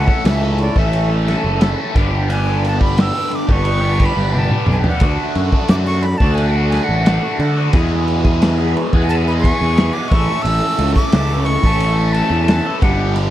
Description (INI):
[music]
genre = psychedelic rock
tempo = 88 BPM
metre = 4/4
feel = straight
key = unclear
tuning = A4 = 440 Hz
[part]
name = breathy bright jazz flute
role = melody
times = 0.0-13.1 s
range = D5 to E6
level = -22 LUFS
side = equal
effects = slapback echo
[part]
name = string machine, violins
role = sustained chords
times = 0.0-13.3 s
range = C#4 to B5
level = -28 LUFS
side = right 2 dB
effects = ensemble chorus
[part]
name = biting overdriven guitar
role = riff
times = 0.0-13.3 s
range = E2 to A4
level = -21 LUFS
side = equal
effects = phaser
[part]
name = fuzz picked electric bass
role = bass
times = 0.0-13.3 s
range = F#1 to D3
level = -17 LUFS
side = equal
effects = overdrive
[part]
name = raw garage drum kit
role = drums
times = 0.1-13.3 s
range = kick drum, ride cymbal, snare drum, toms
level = -18 LUFS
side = equal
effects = none
[sound]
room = little or no reverb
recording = dry, close 1970s-style studio recording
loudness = -13 LUFS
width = side -13 dB against mid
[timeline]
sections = 0.0-13.3 A section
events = flute solo 0.0-13.3; drum fill 4.3-5.0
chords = 0.0 A; 2.0 G; 5.0 D; 7.7 E; 10.1 A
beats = 0.26 0.94 1.62 | 2.30 2.99 3.67 4.35 | 5.03 5.71 6.39 7.07 | 7.74 8.42 9.10 9.78 | 10.46 11.13 11.81 12.49 | 13.16